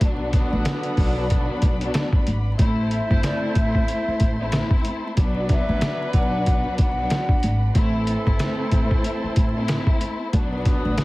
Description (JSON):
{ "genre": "hip hop, boom-bap hip-hop", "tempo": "93 BPM", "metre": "4/4", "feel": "swing 58% on 16ths", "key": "A dorian", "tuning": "A4 = 440 Hz", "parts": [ { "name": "warm studio string section", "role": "accompaniment", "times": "0.0-11.0 s", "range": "F#3 to E4", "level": "-28 LUFS", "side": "left 2 dB", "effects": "high-pass filter, low-pass filter" }, { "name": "bright studio string section", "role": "sustained chords", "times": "0.0-11.0 s", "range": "D4 to C6", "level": "-36 LUFS", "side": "left 1 dB", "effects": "high-pass filter, low-pass filter" }, { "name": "warm saxophone section", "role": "stabs", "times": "0.0-11.0 s", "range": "D3 to C5", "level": "-32 LUFS", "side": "right 2 dB", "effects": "high-pass filter, low-pass filter, ping-pong delay" }, { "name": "upright bass", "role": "bass", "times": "0.0-10.9 s", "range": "G1 to B1", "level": "-25 LUFS", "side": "equal", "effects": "none" }, { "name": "trip hop sampler-style drum kit", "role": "drums", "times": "0.0-11.0 s", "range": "hi-hat, kick drum, snare drum", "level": "-20 LUFS", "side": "equal", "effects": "none" }, { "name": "finger snaps", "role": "percussion", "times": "0.7-11.0 s", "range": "none", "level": "-39 LUFS", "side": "left 3 dB", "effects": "none" }, { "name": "breathy mellow concert flute", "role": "melody", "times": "2.9-7.7 s", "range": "D5 to F#5", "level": "-28 LUFS", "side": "left 1 dB", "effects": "high-pass filter, low-pass filter, ping-pong delay" } ], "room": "little or no reverb", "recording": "heavily compressed radio sound, vinyl crackle", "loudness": "-19 LUFS", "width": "side -20 dB against mid", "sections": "0.0-11.0 A section", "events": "none", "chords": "0.0 Bm; 2.6 Am; 5.2 Bm; 7.8 Am; 10.3 Bm" }